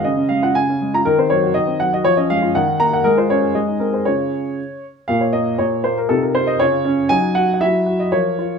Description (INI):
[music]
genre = classical-period piano sonatina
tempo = 119 BPM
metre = 2/4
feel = straight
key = Db major, Bb minor from 5.1 s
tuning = A4 = 439 Hz
[part]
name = warm grand piano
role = solo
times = 0.0-8.6 s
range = Bb2 to Bb5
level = -15 LUFS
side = equal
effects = none
[sound]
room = moderate large studio reverb, RT60 0.9 s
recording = minimal, uncompressed stereo recording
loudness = -15 LUFS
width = side -6 dB against mid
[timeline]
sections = 0.0-5.1 A section; 5.1-8.6 B section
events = none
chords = 0.0 Db; 1.0 Cdim/Eb; 2.0 Db/F; 2.5 Ebm; 3.0 Db/Ab; 3.5 Ab; 4.1 Db; 5.1 Bb5; 6.1 F5/C; 6.6 Db; 7.1 Ebm/Gb; 7.6 Esus2/F#